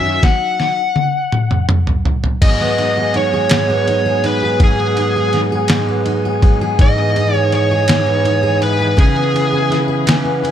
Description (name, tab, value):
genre	six-eight pop ballad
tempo	55 BPM (dotted quarters)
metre	6/8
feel	straight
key	G# minor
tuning	A4 = 438 Hz
part	biting lead guitar	melody	0.0-9.8 s	G#4 to F#5	-18 LUFS	right 1 dB	overdrive, ping-pong delay
part	picked steel-string acoustic guitar	accompaniment	0.0-10.5 s	G#2 to A#4	-17 LUFS	equal	none
part	bright tonewheel organ	sustained chords	0.0-10.5 s	F#2 to B4	-21 LUFS	left 2 dB	chorus vibrato, fast rotary speaker
part	lo-fi sampler-style drum kit	drums	0.2-10.5 s	crash cymbal, kick drum, ride cymbal, snare drum, toms	-15 LUFS	equal	overdrive
room	light reverb, digital ambience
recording	none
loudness	-12 LUFS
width	side -10 dB against mid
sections	0.0-2.4 A section; 2.4-10.5 B section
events	drum fill 0.2-2.4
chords	0.0 D#m7/F#; 2.4 G#m7; 6.8 Emaj7/G#; 9.0 C#m7